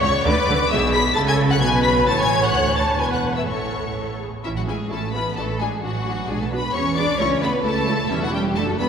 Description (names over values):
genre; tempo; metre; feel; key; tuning
quick classical-period movement for string orchestra; 131 BPM; 2/4; rubato; A major; A4 = 440 Hz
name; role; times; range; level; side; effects
warm symphonic violin section; melody; 0.0-8.9 s; E5 to B6; -26 LUFS; left 5 dB; none
warm symphonic violin section; second line; 0.0-8.9 s; E4 to B5; -24 LUFS; left 2 dB; none
warm symphonic viola section; accompaniment; 0.0-8.9 s; F#3 to C#5; -24 LUFS; equal; none
clear studio cello section; bass; 0.0-8.9 s; D2 to D4; -25 LUFS; right 1 dB; none
warm symphonic double bass section; bass; 0.0-8.9 s; E1 to E2; -26 LUFS; right 2 dB; none
room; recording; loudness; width
wet church reverb, RT60 3.9 s; recorded in a church or concert hall; -18 LUFS; side -7 dB against mid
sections
0.0-4.4 A section; 4.4-8.9 B section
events
none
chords
0.3 Bm/D; 0.7 E/B; 1.2 A/C#; 1.6 G#m/B; 2.1 A; 2.5 D; 3.0 E5; 3.5 A; 5.4 D/A; 6.3 Bm; 6.7 E; 7.2 A/C#; 8.1 A7/E